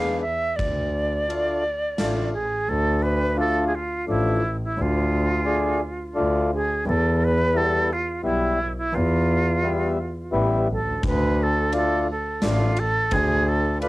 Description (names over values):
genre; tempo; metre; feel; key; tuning
klezmer; 86 BPM; 3/4; straight; D dorian sharp4; A4 = 440 Hz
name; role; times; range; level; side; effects
concert flute; melody; 0.0-13.9 s; E4 to F5; -25 LUFS; right 1 dB; none
mellow accordion; accompaniment; 0.0-13.9 s; F3 to E5; -24 LUFS; left 2 dB; cassette tape
muted double bass; bass; 0.0-13.9 s; A1 to E2; -24 LUFS; equal; none
gated 80s drum kit; drums; 0.6-2.1, 11.0-13.9 s; kick drum, ride cymbal, snare drum; -28 LUFS; equal; cassette tape
room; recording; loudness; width
moderate small room reverb, RT60 0.5 s; home recording on cassette; -20 LUFS; side -19 dB against mid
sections
0.0-2.7 A section; 2.7-13.9 B section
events
none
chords
0.0 E7; 0.6 Dm; 6.9 Em; 11.0 Dm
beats
| 0.59 1.29 1.99 | 2.68 3.38 4.08 | 4.77 5.47 6.16 | 6.86 7.55 8.25 | 8.95 9.64 10.34 | 11.03 11.73 12.43 | 13.12 13.82